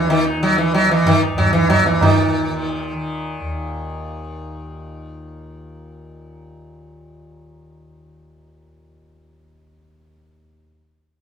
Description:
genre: indian classical, Hindustani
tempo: 188 BPM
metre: 3/4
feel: straight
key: unclear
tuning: A4 = 440 Hz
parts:
  - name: sitar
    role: melody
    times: 0.0-2.9 s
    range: Eb3 to Eb4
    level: -16 LUFS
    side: equal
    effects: none
  - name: tanpura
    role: drone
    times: 0.0-10.5 s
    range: Eb2 to Eb3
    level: -29 LUFS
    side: left 1 dB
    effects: none
  - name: tabla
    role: percussion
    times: 0.0-2.1 s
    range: none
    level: -20 LUFS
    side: right 2 dB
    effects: none
room: light reverb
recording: minimal, uncompressed stereo recording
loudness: -15 LUFS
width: side -7 dB against mid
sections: 0.0-2.0 A section; 2.0-3.9 B section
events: speeding up 0.0-3.9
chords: none

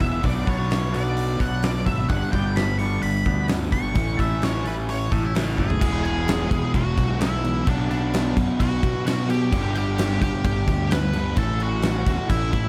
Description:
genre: quiet-loud alternative rock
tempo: 130 BPM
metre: 4/4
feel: straight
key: unclear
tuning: A4 = 440 Hz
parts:
  - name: octave-fuzz lead guitar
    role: melody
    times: 0.0-12.7 s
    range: D4 to C#6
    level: -31 LUFS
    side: equal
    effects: distortion, slapback echo
  - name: twangy electric guitar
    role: arpeggios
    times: 0.0-5.8 s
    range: E3 to A4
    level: -38 LUFS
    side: equal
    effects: phaser, slapback echo
  - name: crunchy overdriven guitar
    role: riff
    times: 0.0-12.7 s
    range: G2 to G#4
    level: -31 LUFS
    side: equal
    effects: spring reverb
  - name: thick fuzz guitar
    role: riff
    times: 0.0-12.7 s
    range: E2 to B3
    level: -32 LUFS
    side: equal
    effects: distortion
  - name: fuzz fingered electric bass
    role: bass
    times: 0.0-12.7 s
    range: E1 to B2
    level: -28 LUFS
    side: equal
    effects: overdrive
  - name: huge arena drum kit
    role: drums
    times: 0.0-12.6 s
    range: crash cymbal, hi-hat, kick drum, snare drum, toms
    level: -27 LUFS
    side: equal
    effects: none
room: small room ambience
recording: none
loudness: -23 LUFS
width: mono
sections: 0.0-5.8 A section; 5.8-12.7 B section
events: lead electric guitar solo 0.0-5.8; drum fill 5.6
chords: 0.2 Bm; 2.1 G; 4.0 A; 5.8 E; 7.7 Bm; 9.5 G; 11.4 A

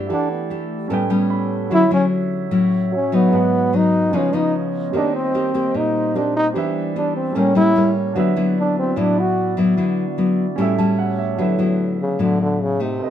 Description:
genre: bossa nova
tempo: 149 BPM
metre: 4/4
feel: straight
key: D major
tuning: A4 = 440 Hz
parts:
  - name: nylon-string guitar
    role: accompaniment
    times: 0.0-13.1 s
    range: G#2 to G4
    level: -19 LUFS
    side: left 2 dB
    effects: none
  - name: warm grand piano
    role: accompaniment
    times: 0.0-13.1 s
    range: C4 to B5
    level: -27 LUFS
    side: right 7 dB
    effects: none
  - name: glass harmonica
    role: sustained chords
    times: 0.0-11.4 s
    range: G3 to E5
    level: -28 LUFS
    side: right 3 dB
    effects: none
  - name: mellow trombone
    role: melody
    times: 0.1-13.1 s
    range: A2 to F#4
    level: -19 LUFS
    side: equal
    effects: none
room: light reverb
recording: minimal, uncompressed stereo recording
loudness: -16 LUFS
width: side -10 dB against mid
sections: 0.0-11.4 A section; 11.4-13.1 B section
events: trombone solo 0.0-11.4; grand piano fill 0.9-1.7, 10.6-11.4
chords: 0.1 Em11; 0.9 A9; 1.7 Dmaj9; 3.3 G#m7; 4.1 C#9; 4.9 Eb6; 6.5 Em7; 7.4 A7b9; 8.2 D69; 10.6 A7; 11.4 D69

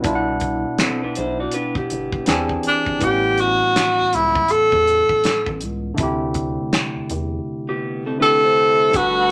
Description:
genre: R&B, neo-soul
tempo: 81 BPM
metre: 4/4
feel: swing 61% on 16ths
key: unclear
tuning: A4 = 435 Hz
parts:
  - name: barky tine electric piano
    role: accompaniment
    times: 0.0-9.3 s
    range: A2 to F#5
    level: -27 LUFS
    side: equal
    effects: overdrive
  - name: damped 70s drum kit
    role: drums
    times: 0.0-9.2 s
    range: finger snaps, hi-hat, kick drum, snare drum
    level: -25 LUFS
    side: equal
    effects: none
  - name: rubbery square bass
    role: bass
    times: 0.1-9.3 s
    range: G1 to E2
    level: -32 LUFS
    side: equal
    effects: none
  - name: electric guitar through a small old amp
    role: second line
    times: 0.8-2.3, 7.7-8.9 s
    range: B3 to D5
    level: -28 LUFS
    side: equal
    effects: none
  - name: breathy tenor saxophone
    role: melody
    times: 2.7-9.3 s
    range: D4 to A4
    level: -18 LUFS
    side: equal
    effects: none
  - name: string machine, full ensemble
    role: sustained chords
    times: 8.9-9.3 s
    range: A4 to B5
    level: -27 LUFS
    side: equal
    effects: ensemble chorus
room: moderate small room reverb, RT60 0.5 s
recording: none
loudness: -19 LUFS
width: mono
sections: 0.0-8.9 A section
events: silent gap 7.5-8.9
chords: 0.1 Cmaj9#11; 2.3 E7alt; 3.0 A13; 6.0 D9sus4

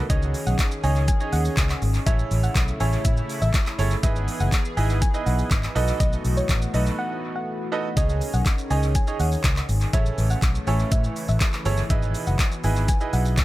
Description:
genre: dance-pop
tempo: 122 BPM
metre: 4/4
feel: straight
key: C# minor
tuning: A4 = 438 Hz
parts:
  - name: chorused pulse-width pad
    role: sustained chords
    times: 0.0-13.4 s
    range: B2 to G#4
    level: -32 LUFS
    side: left 1 dB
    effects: sidechain pumping
  - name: soft round pluck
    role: melody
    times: 0.1-13.2 s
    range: C#5 to G#5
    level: -32 LUFS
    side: equal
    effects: chorus, sidechain pumping, dub echo
  - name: bright grand piano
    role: accompaniment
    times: 0.1-13.4 s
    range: C#4 to D#5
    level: -30 LUFS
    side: right 5 dB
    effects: sidechain pumping, dub echo
  - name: vintage muted fingered electric bass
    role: bass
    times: 0.1-13.4 s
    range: F#1 to A2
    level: -23 LUFS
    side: equal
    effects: sidechain pumping
  - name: pop drum kit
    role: drums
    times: 0.1-13.4 s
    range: handclaps, hi-hat, kick drum, shaker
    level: -24 LUFS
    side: equal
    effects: none
room: digital ambience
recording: echo-heavy mix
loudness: -20 LUFS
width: side -16 dB against mid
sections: 0.0-8.0 A section; 8.0-13.4 A section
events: drop 0.0-8.0, 8.0-13.4; break 7.0-8.0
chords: 0.1 C#sus2; 2.1 Amaj7; 4.0 Emaj7; 5.8 B7; 8.0 C#sus2; 9.9 Amaj7; 11.9 Emaj7

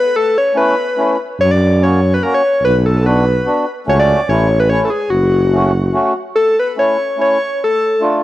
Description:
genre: alpine folk, alpine dance band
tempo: 145 BPM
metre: 3/4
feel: straight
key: F# minor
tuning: A4 = 441 Hz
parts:
  - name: soft struck synth lead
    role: melody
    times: 0.0-8.0 s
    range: F#4 to D5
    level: -14 LUFS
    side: left 1 dB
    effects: chorus, tape echo
  - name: mellow accordion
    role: accompaniment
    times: 0.5-8.2 s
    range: A3 to F#4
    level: -18 LUFS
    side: equal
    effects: none
  - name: mellow tuba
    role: bass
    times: 1.4-5.9 s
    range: F#1 to F#2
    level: -14 LUFS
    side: right 1 dB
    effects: tube saturation
room: light reverb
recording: none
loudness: -12 LUFS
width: side -15 dB against mid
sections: 0.0-6.4 A section; 6.4-8.2 B section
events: none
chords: 0.1 Aadd9; 1.4 F#; 2.6 Bm; 3.9 F#m/C#; 4.3 A; 5.1 F#m; 6.4 A; 7.6 Dm

